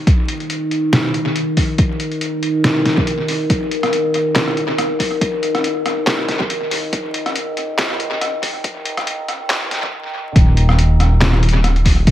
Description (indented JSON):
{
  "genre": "deep dubstep",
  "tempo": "140 BPM",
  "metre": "4/4",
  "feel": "swing 55% on 16ths, half-time",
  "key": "unclear",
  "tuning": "A4 = 440 Hz",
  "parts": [
    { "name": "overtone-sweeping drone", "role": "sustained chords", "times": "0.0-10.4 s", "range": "Eb3", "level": "-21 LUFS", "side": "equal", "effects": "chorus, built-in reverb" },
    { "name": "dark detuned saw bass", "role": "bass", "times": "0.0-12.1 s", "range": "Eb1 to Eb2", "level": "-18 LUFS", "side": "equal", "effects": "high-pass filter" },
    { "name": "electronic kick drum", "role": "drums", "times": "0.1-12.1 s", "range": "none", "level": "-15 LUFS", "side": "equal", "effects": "none" },
    { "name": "trip hop sampler-style drum kit", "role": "drums", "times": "0.1-12.1 s", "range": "handclaps, hi-hat, rim click, snare drum", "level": "-20 LUFS", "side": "equal", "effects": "tape echo" }
  ],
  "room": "light reverb",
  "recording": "echo-heavy mix, vinyl crackle, high-pass filter",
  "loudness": "-15 LUFS",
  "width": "side -12 dB against mid",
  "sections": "0.0-10.4 A section; 10.4-12.1 B section",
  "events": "build-up 0.0-10.4; filter sweep 0.0-10.4; break 9.9-10.4; drop 10.4-12.1",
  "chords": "0.0 Eb5",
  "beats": "| 0.07 0.50 0.93 1.36 | 1.78 2.21 2.64 3.07 | 3.50 3.93 4.36 4.79 | 5.21 5.64 6.07 6.50 | 6.93 7.36 7.79 8.21 | 8.64 9.07 9.50 9.93 | 10.36 10.79 11.21 11.64 | 12.07"
}